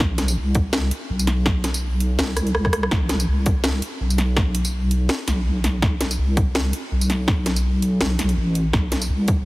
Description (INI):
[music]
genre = half-time drum and bass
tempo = 165 BPM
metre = 4/4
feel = swing 56% on 16ths, half-time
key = unclear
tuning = A4 = 442 Hz
[part]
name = deep soft wobble bass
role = bass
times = 0.0-9.5 s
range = A1 to C2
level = -21 LUFS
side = equal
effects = chorus
[part]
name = drum and bass drum kit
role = drums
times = 0.0-9.4 s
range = hi-hat, rim click, snare drum, tambourine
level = -24 LUFS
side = equal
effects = overdrive, studio reverb
[part]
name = electronic kick drum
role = drums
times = 0.0-9.4 s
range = none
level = -20 LUFS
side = equal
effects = overdrive, studio reverb
[sound]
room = little or no reverb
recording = heavily compressed radio sound, multiband compression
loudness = -18 LUFS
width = side -20 dB against mid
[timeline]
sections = 0.0-9.5 A section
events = drum fill 2.4-2.9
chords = none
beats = | 0.01 0.37 0.73 1.10 | 1.46 1.82 2.19 2.55 | 2.92 3.28 3.64 4.01 | 4.37 4.73 5.10 5.46 | 5.83 6.19 6.55 6.92 | 7.28 7.64 8.01 8.37 | 8.73 9.10